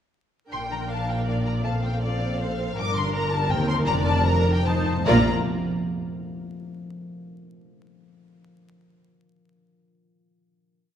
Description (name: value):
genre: classical, dramatic, fast romantic movement for symphony orchestra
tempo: 145-163 BPM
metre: 3/4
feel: rubato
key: Bb major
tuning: A4 = 439 Hz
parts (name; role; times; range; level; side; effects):
- warm symphonic violin section; melody; 0.5-5.3 s; F5 to D6; -29 LUFS; left 4 dB; none
- warm symphonic violin section; second line; 0.5-5.3 s; Bb4 to G5; -30 LUFS; right 1 dB; none
- warm symphonic viola section; accompaniment; 0.5-5.3 s; Bb3 to C5; -30 LUFS; right 2 dB; none
- concert harp; arpeggios; 0.5-6.3 s; G2 to F5; -31 LUFS; left 3 dB; none
- dark symphonic cello section; bass; 0.5-5.3 s; Eb2 to Bb2; -28 LUFS; right 1 dB; none
- warm studio double bass section; bass; 0.5-5.3 s; F1 to Eb2; -29 LUFS; right 1 dB; none
- timpani; percussion; 3.9-5.2 s; F2 to Bb2; -30 LUFS; right 1 dB; none
room: wet scoring stage reverb, RT60 2.0 s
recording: minimal, uncompressed stereo recording, vinyl crackle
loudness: -21 LUFS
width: side -9 dB against mid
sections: 0.5-5.1 A section; 5.1-6.3 final chord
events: timpani fill 4.7-5.1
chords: 0.5 Bb; 1.7 F/Bb; 2.8 Gm; 3.5 Cm7/Eb; 3.9 Bb/F; 4.7 F7; 5.1 Bb